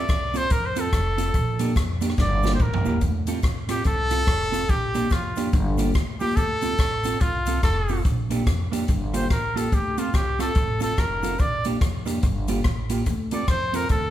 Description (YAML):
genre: ska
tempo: 143 BPM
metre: 4/4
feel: swing 62% on 8ths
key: D minor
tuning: A4 = 441 Hz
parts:
  - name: warm trumpet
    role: melody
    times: 0.0-14.1 s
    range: F4 to D5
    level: -26 LUFS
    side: equal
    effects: none
  - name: electric guitar at the edge of break-up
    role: accompaniment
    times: 0.0-13.8 s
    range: Bb3 to A4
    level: -29 LUFS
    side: right 3 dB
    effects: warbly pitch drift, dub echo
  - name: upright bass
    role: bass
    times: 0.0-14.1 s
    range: F1 to F2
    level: -27 LUFS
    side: equal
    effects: none
  - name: swinging big-band drum kit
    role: drums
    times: 0.1-14.0 s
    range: hi-hat, kick drum, rim click, snare drum, toms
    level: -24 LUFS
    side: equal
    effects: none
  - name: cabasa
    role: percussion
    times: 0.1-14.0 s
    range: none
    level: -47 LUFS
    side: left 6 dB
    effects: none
room: moderate large studio reverb, RT60 1.1 s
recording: band playing live in one room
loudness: -21 LUFS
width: side -12 dB against mid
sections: 0.0-3.0 A section; 3.0-14.1 A section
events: trumpet solo 0.0-3.0, 3.0-14.1; drum fill 2.2-3.0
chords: 0.0 Dm7; 1.3 Bb6; 2.2 Gm7; 2.6 C7; 3.0 Dm7; 4.7 Bb6; 5.5 Gm7; 6.4 Dm7; 8.0 Bb6; 8.9 Gm7; 9.7 Dm7; 11.4 Bb6; 12.2 Gm7; 13.1 Dm7